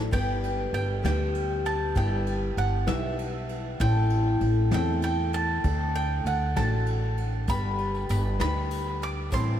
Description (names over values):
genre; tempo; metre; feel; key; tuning
acoustic folk duo or small band; 65 BPM (dotted quarters); 6/8; straight; G major; A4 = 440 Hz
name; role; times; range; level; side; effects
picked twelve-string acoustic guitar; accompaniment; 0.0-9.6 s; A2 to C5; -31 LUFS; left 3 dB; none
upright bass; bass; 0.0-9.6 s; G1 to E2; -27 LUFS; equal; none
bowl-back mandolin; melody; 0.1-9.6 s; E5 to D6; -31 LUFS; right 2 dB; diffuse ambient delay
soft brush drum kit; drums; 0.1-9.5 s; crash cymbal, kick drum, ride cymbal, snare drum; -34 LUFS; equal; none
tambourine; percussion; 7.5-9.5 s; none; -50 LUFS; left 8 dB; none
room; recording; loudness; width
light reverb, small room reverb; none; -24 LUFS; side -10 dB against mid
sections
0.1-9.6 A section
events
none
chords
0.1 G; 2.0 Em/G; 3.8 Am; 5.6 D; 7.5 G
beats
| 0.13 1.05 | 1.97 2.89 | 3.81 4.73 | 5.64 6.57 | 7.48 8.40 | 9.32